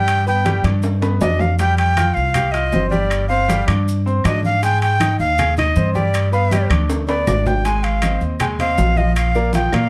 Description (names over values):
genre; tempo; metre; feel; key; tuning
latin, salsa; 158 BPM; 4/4; straight; unclear; A4 = 440 Hz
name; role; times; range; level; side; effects
breathy bright jazz flute; melody; 0.0-9.9 s; D5 to Ab5; -22 LUFS; equal; none
bright baby grand piano; accompaniment; 0.0-9.9 s; F3 to Ab6; -26 LUFS; equal; none
upright bass; bass; 0.0-9.9 s; G1 to Bb2; -21 LUFS; equal; none
congas; percussion; 0.1-9.9 s; none; -27 LUFS; equal; none
maracas; percussion; 0.1-9.9 s; none; -42 LUFS; equal; none
timbales; percussion; 0.1-9.9 s; none; -28 LUFS; equal; none
claves; percussion; 2.0-9.9 s; none; -34 LUFS; equal; none
room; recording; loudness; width
light reverb; dark, warm production; -17 LUFS; mono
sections
0.0-7.7 A section; 7.7-9.9 B section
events
drum fill 0.8-1.6, 6.7-7.7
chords
0.1 G; 1.6 Fsus2; 3.1 G7sus4; 4.6 Abmaj7; 6.1 G7; 7.7 Ab; 9.2 Bb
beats
| 0.08 0.46 0.84 1.22 | 1.60 1.98 2.35 2.73 | 3.11 3.49 3.87 4.25 | 4.62 5.00 5.38 5.76 | 6.14 6.52 6.90 7.27 | 7.65 8.03 8.41 8.79 | 9.17 9.54